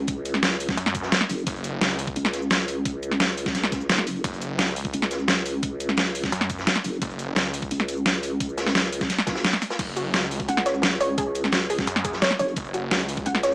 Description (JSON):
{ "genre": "dark technical drum and bass", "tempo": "173 BPM", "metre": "4/4", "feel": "straight", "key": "unclear", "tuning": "A4 = 438 Hz", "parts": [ { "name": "vowel-sweep wobble bass", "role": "bass", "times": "0.0-13.5 s", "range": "F#1 to C#2", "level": "-27 LUFS", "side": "equal", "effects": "chorus" }, { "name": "crunchy breakbeat drum kit", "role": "drums", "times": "0.1-13.5 s", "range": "hi-hat, snare drum", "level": "-33 LUFS", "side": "equal", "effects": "none" }, { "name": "dubstep drum kit", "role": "drums", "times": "0.1-13.5 s", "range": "crash cymbal, hi-hat, shaker, snare drum", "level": "-23 LUFS", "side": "equal", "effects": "overdrive, small room ambience" }, { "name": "electronic kick drum", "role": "drums", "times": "0.1-13.2 s", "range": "none", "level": "-31 LUFS", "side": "equal", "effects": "small room ambience" }, { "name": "snarling distorted saw bass", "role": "bass", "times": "0.8-2.1, 4.2-7.7, 9.8-13.2 s", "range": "F#1 to F#2", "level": "-29 LUFS", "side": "equal", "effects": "distortion, tube saturation, sidechain pumping" }, { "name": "soft round pluck", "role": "arpeggios", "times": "10.0-13.5 s", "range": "F#4 to F#5", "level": "-26 LUFS", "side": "equal", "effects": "lush chorus, sidechain pumping, tape echo" } ], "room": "light reverb, digital ambience", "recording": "small speaker sound", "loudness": "-22 LUFS", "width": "side -25 dB against mid", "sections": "0.0-13.5 A section", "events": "none", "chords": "0.0 F#5", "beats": "| 0.08 0.43 0.77 1.12 | 1.47 1.81 2.16 2.51 | 2.85 3.20 3.55 3.90 | 4.24 4.59 4.94 5.28 | 5.63 5.98 6.32 6.67 | 7.02 7.36 7.71 8.06 | 8.40 8.75 9.10 9.45 | 9.79 10.14 10.48 10.83 | 11.18 11.53 11.87 12.22 | 12.57 12.91 13.26" }